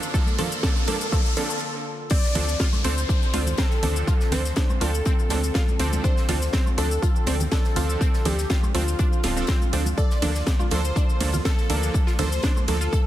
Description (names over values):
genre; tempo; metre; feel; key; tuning
progressive house; 122 BPM; 4/4; straight; D minor; A4 = 441 Hz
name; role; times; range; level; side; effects
warm analog pad; sustained chords; 0.0-13.1 s; D3 to A4; -36 LUFS; left 1 dB; chorus, sidechain pumping
house drum kit; drums; 0.0-13.0 s; crash cymbal, hi-hat, ride cymbal, shaker, snare drum; -31 LUFS; equal; overdrive, sidechain pumping on perc, sidechain pumping on hats, sidechain pumping on cymbals
woodblock and congas; percussion; 0.0-12.8 s; none; -34 LUFS; right 2 dB; sidechain pumping on perc
riser and downlifter; sound effects; 0.0-6.0 s; none; -33 LUFS; equal; none
wide unison pluck; arpeggios; 0.1-13.0 s; C4 to A4; -32 LUFS; equal; cassette tape, sidechain pumping, tape echo
supersaw stab; stabs; 0.1-12.8 s; F3 to A4; -31 LUFS; right 4 dB; sidechain pumping, tape echo
electronic kick drum; drums; 0.1-13.0 s; none; -22 LUFS; equal; overdrive
plucky unison lead; melody; 2.1-13.1 s; F4 to D5; -31 LUFS; left 1 dB; sidechain pumping, tape echo
modern studio drum kit; drums; 2.1-13.0 s; hi-hat, snare drum; -40 LUFS; left 4 dB; none
tight sequencer bass; bass; 2.4-12.9 s; D1 to D2; -25 LUFS; equal; sidechain pumping
room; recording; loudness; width
light reverb, digital ambience; dense, heavily limited modern master; -20 LUFS; side -13 dB against mid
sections
0.0-2.1 A section; 2.1-13.1 B section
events
build-up 0.0-2.1; riser 0.0-1.6; filter sweep on synth pluck 0.0-2.1; break 1.6-2.1; drop 2.1-13.1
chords
0.0 Bbmaj7/D; 2.1 Dm7; 10.0 Bbmaj7/D